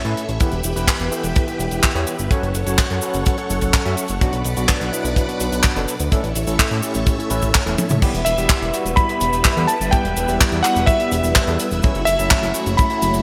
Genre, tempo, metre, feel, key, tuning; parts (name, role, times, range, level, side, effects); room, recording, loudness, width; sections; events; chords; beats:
italo disco; 126 BPM; 4/4; straight; E dorian; A4 = 440 Hz
string machine, full ensemble; sustained chords; 0.0-13.2 s; G3 to D6; -29 LUFS; equal; phaser, ensemble chorus, vintage 12-bit sampler grit
overdriven tine electric piano; stabs; 0.0-13.2 s; A2 to E5; -27 LUFS; equal; fast tremolo, delay
fat analog bass; bass; 0.0-13.2 s; E1 to A2; -26 LUFS; equal
tight funk drum kit; drums; 0.0-13.2 s; cabasa, crash cymbal, handclaps, hi-hat, toms; -24 LUFS; equal; small room ambience, gated reverb
kick drum; drums; 0.4-12.9 s; -21 LUFS; equal; small room ambience
bright electric grand piano; melody; 8.2-13.2 s; E5 to B5; -23 LUFS; equal; delay
moderate lush hall reverb, RT60 1.8 s, studio reverb; bright 1980s-style digital production; -19 LUFS; mono
0.0-8.0 A section; 8.0-13.2 B section
drum fill 7.8
0.4 Em; 2.3 F#m; 4.2 Bm; 6.1 A; 8.0 Em; 11.8 F#m7
| 0.40 0.88 1.35 1.83 | 2.31 2.78 3.26 3.74 | 4.21 4.69 5.17 5.64 | 6.12 6.59 7.07 7.55 | 8.02 8.50 8.97 9.45 | 9.93 10.40 10.88 11.36 | 11.83 12.31 12.78